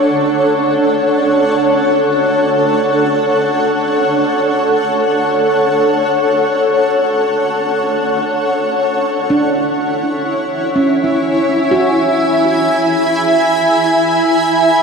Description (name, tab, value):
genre	ambient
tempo	free time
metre	none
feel	none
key	D lydian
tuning	A4 = 439 Hz
part	granular cloud pad	sustained chords	0.0-14.8 s	D4 to B5	-12 LUFS	equal	built-in reverb
part	handpan	arpeggios	9.3-14.0 s	C#4 to F#4	-18 LUFS	right 1 dB	ping-pong delay
room	wet cathedral reverb, RT60 5.5 s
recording	none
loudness	-12 LUFS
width	side -5 dB against mid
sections	0.0-14.8 A section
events	none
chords	0.0 Dmaj7; 8.8 E